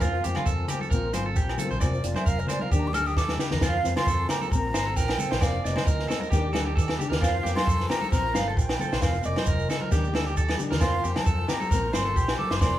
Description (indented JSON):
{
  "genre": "highlife guitar band",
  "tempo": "134 BPM",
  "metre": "4/4",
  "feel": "swing 54% on 16ths",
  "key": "F mixolydian",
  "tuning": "A4 = 440 Hz",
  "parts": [
    { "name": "breathy mellow concert flute", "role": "melody", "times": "0.0-12.8 s", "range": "F4 to F6", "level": "-30 LUFS", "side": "right 1 dB", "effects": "none" },
    { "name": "nylon-string guitar", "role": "accompaniment", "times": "0.0-12.8 s", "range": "Eb3 to G4", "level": "-35 LUFS", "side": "left 4 dB", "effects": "none" },
    { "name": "percussive tonewheel organ", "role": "sustained chords", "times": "0.0-12.8 s", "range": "C4 to D5", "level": "-39 LUFS", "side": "left 1 dB", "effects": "slow rotary speaker, overdrive, chorus vibrato" },
    { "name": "electric guitar at the edge of break-up", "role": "arpeggios", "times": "0.0-12.8 s", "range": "F4 to F5", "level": "-32 LUFS", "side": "right 3 dB", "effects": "none" },
    { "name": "fingered electric bass", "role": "bass", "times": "0.0-12.8 s", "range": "F1 to F2", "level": "-30 LUFS", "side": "equal", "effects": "none" },
    { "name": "compact cocktail drum kit", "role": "drums", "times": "0.0-12.7 s", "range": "hi-hat, kick drum, rim click, snare drum", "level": "-27 LUFS", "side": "equal", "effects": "none" },
    { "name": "agogo bells", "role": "percussion", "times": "0.0-12.7 s", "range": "none", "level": "-37 LUFS", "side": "right 1 dB", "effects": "none" },
    { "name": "shekere", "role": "percussion", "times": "0.0-12.7 s", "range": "none", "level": "-36 LUFS", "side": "right 2 dB", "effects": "none" },
    { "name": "congas", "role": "percussion", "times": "0.4-12.5 s", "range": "none", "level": "-35 LUFS", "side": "left 2 dB", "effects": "none" }
  ],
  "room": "moderate large studio reverb, RT60 0.9 s",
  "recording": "band playing live in one room",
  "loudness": "-23 LUFS",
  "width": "side -12 dB against mid",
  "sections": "0.0-3.6 A section; 3.6-12.8 B section",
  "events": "flute solo 0.0-3.6; drum fill 3.2-3.6, 10.5-10.8",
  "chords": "0.0 Fsus4; 0.9 Bbsus2; 1.8 Fsus4; 2.7 Ebmaj7; 3.6 Fsus4; 4.5 Bbsus2; 5.4 Fsus4; 6.3 Ebmaj7; 7.2 Fsus4; 8.1 Bbsus2; 9.0 Fsus4; 9.9 Ebmaj7; 10.8 Fsus4; 11.7 Bbsus2",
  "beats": "| 0.02 0.47 0.92 1.37 | 1.82 2.27 2.72 3.17 | 3.62 4.07 4.52 4.97 | 5.42 5.87 6.32 6.77 | 7.22 7.67 8.12 8.57 | 9.02 9.46 9.91 10.36 | 10.81 11.26 11.71 12.16 | 12.61"
}